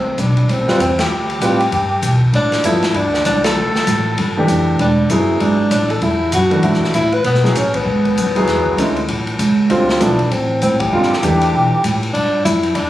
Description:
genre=modal jazz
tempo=196 BPM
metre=4/4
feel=swing 61% on 8ths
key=unclear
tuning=A4 = 442 Hz
part: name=breathy tenor saxophone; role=melody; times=0.0-12.9 s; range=B3 to B4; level=-18 LUFS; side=left 1 dB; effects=none
part: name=upright bass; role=bass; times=0.0-12.9 s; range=E1 to B2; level=-18 LUFS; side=right 1 dB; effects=none
part: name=swinging big-band drum kit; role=drums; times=0.2-12.8 s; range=hi-hat, kick drum, ride cymbal, snare drum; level=-22 LUFS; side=left 2 dB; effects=none
part: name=warm baby grand piano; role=accompaniment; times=0.7-11.7 s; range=D3 to B4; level=-17 LUFS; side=right 1 dB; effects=none
room=moderate small room ambience, RT60 0.5 s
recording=recorded on a phone in the room, club reverb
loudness=-13 LUFS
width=side -14 dB against mid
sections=0.0-12.9 A section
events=band accent 1.0, 3.4, 7.7, 10.8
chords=0.0 D9sus4; 4.8 E9sus4; 9.7 D9sus4

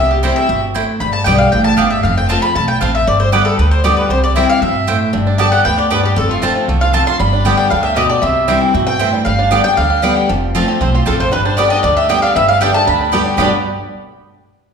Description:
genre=bluegrass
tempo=233 BPM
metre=4/4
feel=straight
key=G mixolydian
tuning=A4 = 441 Hz
part: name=mandolin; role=melody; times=0.0-13.5 s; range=F4 to C6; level=-17 LUFS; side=left 1 dB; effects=none
part: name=warm fiddle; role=second line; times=0.0-13.5 s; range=F4 to C6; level=-24 LUFS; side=left 2 dB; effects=none
part: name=picked steel-string acoustic guitar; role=accompaniment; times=0.0-13.5 s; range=E2 to G4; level=-16 LUFS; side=left 2 dB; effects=none
part: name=upright bass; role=bass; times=0.0-13.5 s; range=F1 to G2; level=-19 LUFS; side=right 1 dB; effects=none
part: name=mandolin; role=stabs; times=0.2-13.5 s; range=B3 to A5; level=-20 LUFS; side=right 6 dB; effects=none
part: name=bluegrass banjo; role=melody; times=5.1-13.5 s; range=D3 to G4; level=-21 LUFS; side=right 5 dB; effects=none
room=wet recital hall reverb, RT60 1.4 s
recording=recorded in a church or concert hall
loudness=-11 LUFS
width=side -6 dB against mid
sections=0.0-13.4 A section; 13.4-14.4 B section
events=none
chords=0.0 C; 1.0 G; 2.0 F; 3.1 G; 4.1 C; 5.1 G; 6.2 F; 7.2 G; 8.2 C; 9.3 G; 10.3 F; 11.3 G

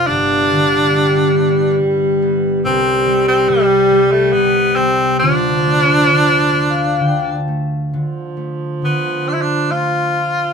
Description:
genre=celtic folk, Celtic slow air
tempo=64-72 BPM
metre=3/4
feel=rubato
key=D dorian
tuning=A4 = 440 Hz
part: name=bright tenor saxophone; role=melody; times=0.0-10.5 s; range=G3 to F4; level=-15 LUFS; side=equal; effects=none
part: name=dark viola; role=second line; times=0.0-10.5 s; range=F3 to G3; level=-17 LUFS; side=equal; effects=none
part: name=concert harp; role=accompaniment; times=0.0-10.5 s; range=F1 to A5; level=-19 LUFS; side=left 1 dB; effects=none
room=moderate small room reverb, RT60 0.5 s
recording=band playing live in one room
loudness=-12 LUFS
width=side -6 dB against mid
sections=0.0-7.9 A section; 7.9-10.5 B section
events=harp fill 6.1-7.9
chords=0.1 G; 2.7 C5; 5.2 Dm

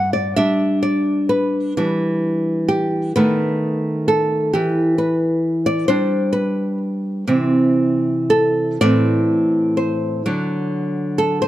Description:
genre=classical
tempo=38-45 BPM (dotted quarters)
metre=6/8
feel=rubato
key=unclear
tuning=A4 = 440 Hz
part: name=nylon-string guitar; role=accompaniment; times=0.0-11.5 s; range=G2 to F#5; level=-16 LUFS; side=equal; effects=none
room=moderate recital hall reverb, RT60 1.7 s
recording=close, detailed microphones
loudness=-16 LUFS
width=side -14 dB against mid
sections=0.0-11.5 A section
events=none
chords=0.0 G5; 1.8 Em7; 3.2 B7/D#; 4.5 Em7; 7.3 C; 8.8 Am; 10.2 D

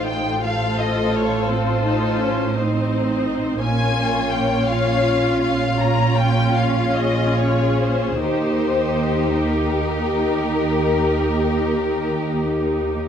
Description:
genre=classical, slow romantic movement for string orchestra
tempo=46-58 BPM (dotted quarters)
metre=12/8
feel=rubato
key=unclear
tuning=A4 = 440 Hz
part: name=warm symphonic violin section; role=melody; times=0.0-12.8 s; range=Bb4 to Bb5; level=-25 LUFS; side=left 4 dB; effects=none
part: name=rich studio violin section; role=second line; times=0.0-13.0 s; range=F4 to Db5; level=-25 LUFS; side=left 4 dB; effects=none
part: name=rich studio viola section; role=accompaniment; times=0.0-13.0 s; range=A3 to G4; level=-22 LUFS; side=right 1 dB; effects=none
part: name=rich studio double bass section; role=bass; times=0.0-13.0 s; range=A1 to Eb2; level=-26 LUFS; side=right 3 dB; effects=none
part: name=warm studio cello section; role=bass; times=0.0-13.0 s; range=Eb2 to Bb2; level=-25 LUFS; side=right 2 dB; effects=none
room=moderate scoring stage reverb, RT60 1.7 s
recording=none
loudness=-17 LUFS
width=side -8 dB against mid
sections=0.0-13.1 A section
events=none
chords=0.0 F7/A; 3.6 Bbm7; 8.2 Eb

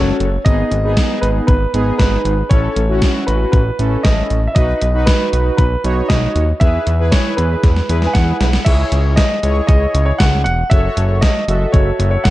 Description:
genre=synth-pop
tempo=117 BPM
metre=4/4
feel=straight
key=unclear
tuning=A4 = 440 Hz
part: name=warm concert grand piano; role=melody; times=0.0-12.3 s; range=B4 to G#5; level=-20 LUFS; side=equal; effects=tape echo
part: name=analog synth brass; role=accompaniment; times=0.0-12.3 s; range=B3 to E5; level=-21 LUFS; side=equal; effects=chorus
part: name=fat analog bass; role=bass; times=0.0-12.3 s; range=E1 to E2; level=-16 LUFS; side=equal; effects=none
part: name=gated 80s digital drum machine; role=drums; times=0.2-12.3 s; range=crash cymbal, hi-hat, kick drum, snare drum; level=-15 LUFS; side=equal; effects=gated reverb, gated reverb snare
room=light reverb, digital ambience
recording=dark, warm production, nothing above 10.3 kHz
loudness=-12 LUFS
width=side -16 dB against mid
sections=0.0-8.7 A section; 8.7-12.3 B section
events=drum fill 7.6-8.7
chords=0.5 G#m; 2.5 Aadd9; 4.6 B; 6.6 E; 8.7 C#madd9; 10.7 F#m

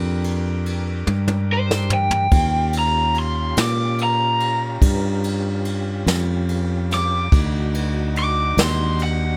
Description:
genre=slow blues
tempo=48 BPM (dotted quarters)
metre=12/8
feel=straight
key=unclear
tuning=A4 = 442 Hz
part: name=bright tonewheel organ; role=sustained chords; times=0.0-9.4 s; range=Db4 to Bb4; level=-33 LUFS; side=equal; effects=slow rotary speaker, overdrive
part: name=fretless electric bass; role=bass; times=0.0-9.4 s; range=D2 to Bb2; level=-24 LUFS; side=equal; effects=none
part: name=jazz brush drum kit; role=drums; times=0.2-9.2 s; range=kick drum, ride cymbal, snare drum, toms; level=-25 LUFS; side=equal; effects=none
part: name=lead guitar through a small cranked amp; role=melody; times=1.5-9.4 s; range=C5 to D6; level=-24 LUFS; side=equal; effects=overdrive
room=little or no reverb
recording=none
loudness=-20 LUFS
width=mono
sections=0.0-9.4 A section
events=lead electric guitar solo 0.0-9.4; drum fill 1.1-2.3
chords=0.0 Gm; 2.3 Eb7; 7.3 D(b9)

